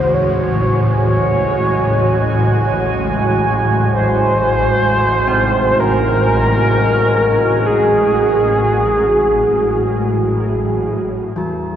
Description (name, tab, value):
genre	dark ambient drone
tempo	free time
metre	none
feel	none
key	unclear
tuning	A4 = 438 Hz
part	mellow horn-like synth lead	melody	0.0-10.5 s	G#4 to C#5	-16 LUFS	equal	lush chorus, tape echo
part	deep dark ambient pad	sustained chords	0.0-11.8 s	G#3 to G#5	-19 LUFS	right 2 dB	chorus, built-in reverb
part	old church bells	arpeggios	0.0-11.8 s	C#3 to C4	-25 LUFS	left 1 dB	tape echo
part	swarming drone	drone	0.0-11.8 s	A1 to A2	-18 LUFS	equal	built-in reverb
part	bronze singing bowl	texture	11.4-11.8 s	F#4	-24 LUFS	right 1 dB	none
room	wet cathedral reverb, RT60 5.2 s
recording	none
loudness	-13 LUFS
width	side -10 dB against mid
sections	0.0-11.4 A section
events	none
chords	0.0 F#sus2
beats	free time